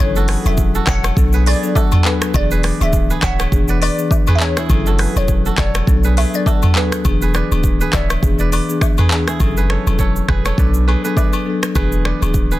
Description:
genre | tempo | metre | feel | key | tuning
afrobeats | 102 BPM | 4/4 | swing 58% on 16ths | B dorian | A4 = 440 Hz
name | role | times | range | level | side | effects
glassy wavetable pluck | melody | 0.0-9.1 s | B4 to F#5 | -25 LUFS | equal | chorus, digital delay
marimba with soft mallets | accompaniment | 0.0-12.4 s | E3 to A4 | -21 LUFS | left 4 dB | none
kora | riff | 0.0-12.6 s | E4 to E5 | -25 LUFS | right 7 dB | digital delay
clean 808-style bass | bass | 0.0-12.6 s | D1 to B1 | -17 LUFS | equal | none
afro-pop drum kit | drums | 0.2-12.6 s | finger snaps, handclaps, hi-hat, kick drum, rim click, shaker, toms | -17 LUFS | equal | overdrive, soft clipping on snare
agogo bells and woodblock | percussion | 0.5-12.3 s | none | -29 LUFS | left 9 dB | none
room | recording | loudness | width
little or no reverb | dense, heavily limited modern master | -13 LUFS | side -16 dB against mid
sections
0.0-9.4 A section; 9.4-12.6 B section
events
none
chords
0.0 F#m7; 1.2 Bm7; 2.3 E7; 4.7 F#m7; 5.9 Bm7; 7.0 E7; 9.4 F#m7; 10.6 Bm7; 11.8 E7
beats
0.58 1.17 1.75 | 2.34 2.93 3.52 4.11 | 4.70 5.28 5.87 6.46 | 7.05 7.64 8.22 8.81 | 9.40 9.99 10.58 11.17 | 11.75 12.34

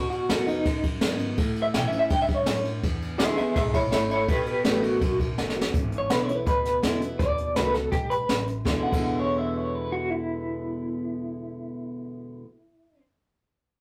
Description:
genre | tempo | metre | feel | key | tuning
rockabilly | 165 BPM | 4/4 | straight | E mixolydian | A4 = 439 Hz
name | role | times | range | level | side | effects
electric guitar through a small old amp | melody | 0.0-13.0 s | D#4 to G5 | -29 LUFS | equal | tremolo
picked steel-string acoustic guitar | accompaniment | 0.0-12.5 s | E2 to F#4 | -33 LUFS | equal | none
upright bass | bass | 0.0-12.0 s | F#1 to C#3 | -37 LUFS | equal | none
jazz brush drum kit | drums | 0.1-9.0 s | crash cymbal, hi-hat, kick drum, ride cymbal, snare drum | -30 LUFS | equal | none
room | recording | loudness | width
moderate studio reverb, RT60 0.6 s | rough rehearsal-room recording, warm saturation | -26 LUFS | mono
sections
0.0-5.7 A section; 5.7-8.6 B section; 8.6-11.6 C section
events
drum fill 5.4-5.7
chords
0.0 B7; 1.4 A7; 2.8 E7; 4.3 B7; 5.7 E7; 7.2 B7; 8.6 E7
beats
0.30 0.66 1.02 | 1.39 1.75 2.11 2.47 | 2.84 3.20 3.56 3.92 | 4.29 4.65 5.01 5.38 | 5.74 6.10 6.47 6.83 | 7.19 7.56 7.92 8.28 | 8.65 9.01 9.37 9.74 | 10.10 10.46 10.83 11.19

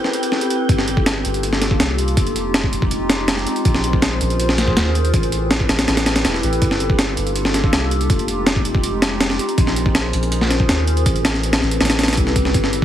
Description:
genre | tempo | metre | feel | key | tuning
drum and bass, jungle | 162 BPM | 4/4 | straight | G dorian | A4 = 440 Hz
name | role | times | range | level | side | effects
warbly tape-like pad | sustained chords | 0.0-12.8 s | Ab3 to C5 | -22 LUFS | equal | chorus, built-in reverb, vintage 12-bit sampler grit
breakbeat sampler-style drum kit | drums | 0.0-12.8 s | hi-hat, kick drum, snare drum | -17 LUFS | equal | studio reverb
wind-like tuned noise texture | texture | 0.0-0.7 s | G5 | -30 LUFS | right 4 dB | built-in reverb
soft dub sub bass | bass | 0.7-12.8 s | E1 to Eb2 | -22 LUFS | equal | none
room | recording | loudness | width
light reverb, digital ambience | heavily compressed radio sound, multiband compression, vinyl crackle | -15 LUFS | side -11 dB against mid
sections
0.7-12.8 A section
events
break 0.0-0.7; drop 0.7-12.8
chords
0.0 Am7; 0.7 Gm7; 2.2 Fm7; 3.7 Bbm7; 5.1 Am7; 6.6 Gm7; 8.1 Fm7; 9.6 Bbm7; 11.1 Am7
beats
0.32 | 0.69 1.06 1.43 1.80 | 2.17 2.54 2.91 3.28 | 3.65 4.02 4.39 4.76 | 5.14 5.51 5.88 6.25 | 6.62 6.99 7.36 7.73 | 8.10 8.47 8.84 9.21 | 9.58 9.95 10.32 10.69 | 11.06 11.43 11.80 12.17 | 12.54

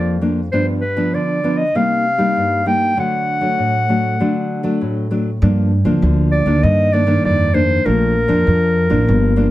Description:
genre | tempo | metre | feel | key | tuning
samba and choro | 98 BPM | 4/4 | straight | G minor | A4 = 440 Hz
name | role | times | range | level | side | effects
clear clarinet | melody | 0.0-9.5 s | Bb4 to G5 | -18 LUFS | equal | none
nylon-string guitar | accompaniment | 0.0-9.5 s | F2 to Eb4 | -17 LUFS | left 1 dB | none
upright bass | bass | 5.4-9.5 s | G1 to G2 | -16 LUFS | equal | none
room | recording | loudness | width
moderate studio ambience, RT60 0.5 s | none | -14 LUFS | side -15 dB against mid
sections
0.0-5.4 A section; 5.4-9.5 B section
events
none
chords
0.0 Bb/F; 0.5 G7; 1.8 Cm7; 3.0 D; 5.4 Gm7; 6.6 Ebmaj7/G; 7.9 Bbmaj7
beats
| 0.53 1.14 1.75 2.36 | 2.98 3.59 4.20 4.81 | 5.42 6.03 6.64 7.25 | 7.86 8.47 9.08

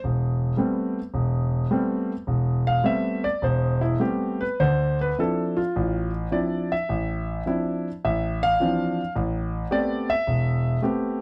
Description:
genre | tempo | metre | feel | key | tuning
solo jazz | 106 BPM | 4/4 | swing 68% on 8ths, rubato | A minor | A4 = 441 Hz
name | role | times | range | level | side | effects
warm concert grand piano | solo | 0.0-11.2 s | E1 to F5 | -24 LUFS | equal | none
room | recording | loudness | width
little or no reverb | close, detailed microphones | -24 LUFS | mono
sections
0.0-11.2 A section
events
grand piano solo 0.0-11.2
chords
0.0 Am9; 4.6 Dm9; 9.2 Am9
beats
| 0.03 0.58 1.15 1.71 | 2.28 2.85 3.43 4.01 | 4.60 5.18 5.75 6.32 | 6.89 7.46 8.03 8.59 | 9.15 9.71 10.26 10.82

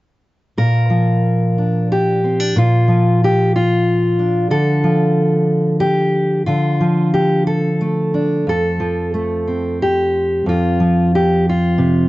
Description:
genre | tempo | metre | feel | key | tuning
folk, solo fingerstyle acoustic guitar | 91 BPM | 3/4 | rubato | unclear | A4 = 440 Hz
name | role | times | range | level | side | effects
fingerpicked steel-string acoustic guitar | solo | 0.6-12.1 s | F2 to Bb4 | -14 LUFS | equal | none
room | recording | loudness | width
light reverb | nothing above 7.7 kHz | -14 LUFS | side -18 dB against mid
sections
0.6-12.1 A section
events
none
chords
0.6 Bb; 4.5 Dm; 8.5 F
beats
| 0.58 1.25 1.91 | 2.57 3.22 3.87 | 4.52 5.17 5.83 | 6.48 7.15 7.82 | 8.49 9.16 9.82 | 10.48 11.14 11.79

